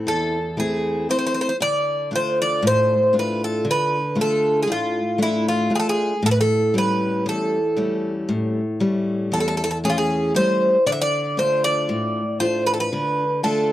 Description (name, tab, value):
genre	greek folk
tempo	117 BPM (eighths)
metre	9/8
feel	straight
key	unclear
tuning	A4 = 437 Hz
part	Greek bouzouki	melody	0.0-13.7 s	E4 to E5	-20 LUFS	right 1 dB	none
part	picked steel-string acoustic guitar	accompaniment	0.0-13.7 s	E2 to F4	-23 LUFS	left 1 dB	none
room	light reverb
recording	dry, close 1970s-style studio recording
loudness	-18 LUFS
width	side -13 dB against mid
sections	0.0-1.6 A section; 1.6-13.7 B section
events	none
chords	0.0 Am; 1.6 Dm; 6.2 A7; 10.9 Dm